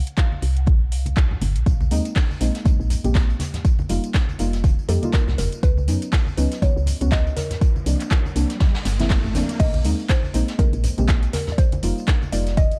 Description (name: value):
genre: deep house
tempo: 121 BPM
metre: 4/4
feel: swing 57% on 16ths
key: Bb dorian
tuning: A4 = 441 Hz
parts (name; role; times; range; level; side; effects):
- mallet-like synth pluck; melody; 0.0-0.9, 4.9-12.8 s; A4 to F5; -34 LUFS; equal; chorus, phaser, vintage 12-bit sampler grit, dub echo
- deep house drum kit; drums; 0.1-12.8 s; crash cymbal, handclaps, hi-hat, tambourine; -34 LUFS; equal; overdrive
- electronic kick drum; drums; 0.2-12.7 s; none; -20 LUFS; equal; overdrive
- congas; percussion; 0.3-12.7 s; none; -32 LUFS; equal; none
- woody FM bass; bass; 0.4-12.7 s; Eb1 to Gb2; -24 LUFS; equal; sidechain pumping
- vintage brush drum kit; drums; 1.7-12.7 s; hi-hat, snare drum; -39 LUFS; equal; sidechain pumping on hats, high-pass filter on hats, high-pass filter on snare, high-pass filter on room
- deep mellow chord stab; stabs; 1.9-12.5 s; F3 to G4; -30 LUFS; equal; chorus, sidechain pumping, tape echo
- riser; sound effects; 7.5-9.6 s; none; -38 LUFS; equal; none
room: digital ambience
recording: dark, warm production, vinyl crackle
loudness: -20 LUFS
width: mono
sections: 0.0-9.6 A section; 9.6-12.8 B section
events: riser 7.5-9.6; drop 9.6-12.8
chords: 0.0 C7sus4; 1.7 Bb9sus4; 3.4 F9sus4; 5.6 Db9sus4; 7.4 C9sus4; 9.6 Bb9sus4; 11.3 F9sus4